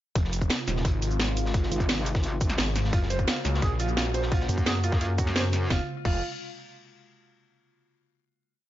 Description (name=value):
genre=dark technical drum and bass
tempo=173 BPM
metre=4/4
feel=straight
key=F phrygian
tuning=A4 = 440 Hz
part: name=sweeping resonant pad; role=sustained chords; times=0.5-5.9 s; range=C3 to Gb4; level=-35 LUFS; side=right 1 dB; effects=chorus, phaser, sidechain pumping
part: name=snarling distorted saw bass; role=bass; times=0.2-6.2 s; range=Eb1 to Db2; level=-28 LUFS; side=equal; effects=overdrive, sidechain pumping
part: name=crunchy breakbeat drum kit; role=drums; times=0.2-5.6 s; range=hi-hat, snare drum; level=-39 LUFS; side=equal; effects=high-pass filter on hats, high-pass filter on snare, high-pass filter on room
part: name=drum and bass drum kit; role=drums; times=0.2-6.1 s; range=cabasa, crash cymbal, hi-hat, snare drum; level=-30 LUFS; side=equal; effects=overdrive
part: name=electronic kick drum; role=drums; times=0.2-6.1 s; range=none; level=-26 LUFS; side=equal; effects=overdrive
part: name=metallic wobble bass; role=bass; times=1.7-5.7 s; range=Ab1 to Gb2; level=-27 LUFS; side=equal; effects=chorus
part: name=felt-muted upright piano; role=arpeggios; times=2.9-6.2 s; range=F4 to C5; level=-33 LUFS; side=right 2 dB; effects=sidechain pumping, ping-pong delay
room=small room ambience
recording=nothing above 7.5 kHz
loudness=-24 LUFS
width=side -14 dB against mid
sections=0.2-5.7 drop; 5.7-7.1 final chord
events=drop 0.2-5.7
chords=0.2 Fm; 2.9 Gb; 5.7 N.C.